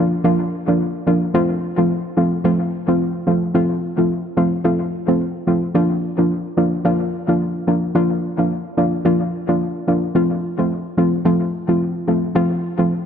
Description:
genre	afrobeats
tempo	109 BPM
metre	4/4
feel	swing 58% on 16ths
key	Bb major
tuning	A4 = 436 Hz
part	soft round pluck	solo	0.0-12.9 s	F3 to F4	-16 LUFS	equal	chorus, dub echo
room	light reverb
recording	echo-heavy mix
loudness	-16 LUFS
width	side -8 dB against mid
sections	0.0-13.1 A section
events	none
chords	0.0 Bb; 1.3 F; 5.7 Bb; 10.2 F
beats	0.24 0.79 | 1.34 1.90 2.44 3.00 | 3.55 4.10 4.65 5.20 | 5.75 6.30 6.85 7.40 | 7.95 8.50 9.05 9.60 | 10.15 10.70 11.25 11.80 | 12.35 12.90

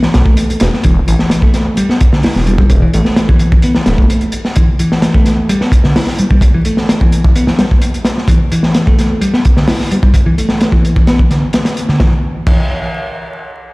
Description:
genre	breakbeat, breaks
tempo	129 BPM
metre	4/4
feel	straight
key	unclear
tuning	A4 = 440 Hz
part	modern bright picked electric bass	riff	0.0-12.6 s	D3 to E4	-15 LUFS	equal	low-pass filter, digital delay
part	crunchy breakbeat drum kit	drums	0.0-12.6 s	crash cymbal, hi-hat, kick drum, snare drum	-11 LUFS	equal	none
part	phased detuned saw bass	bass	0.1-4.1 s	D1 to B1	-12 LUFS	equal	phaser
room	light reverb, small room ambience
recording	played on a big sound system in a bare room, large studio reverb, vinyl crackle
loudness	-9 LUFS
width	side -24 dB against mid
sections	0.0-12.0 A section; 12.0-13.7 B section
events	none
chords	none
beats	0.38 | 0.84 1.31 1.77 2.24 | 2.70 3.17 3.63 4.10 | 4.56 5.03 5.49 5.96 | 6.42 6.89 7.35 7.82 | 8.28 8.75 9.21 9.68 | 10.14 10.61 11.07 11.54 | 12.00 12.47

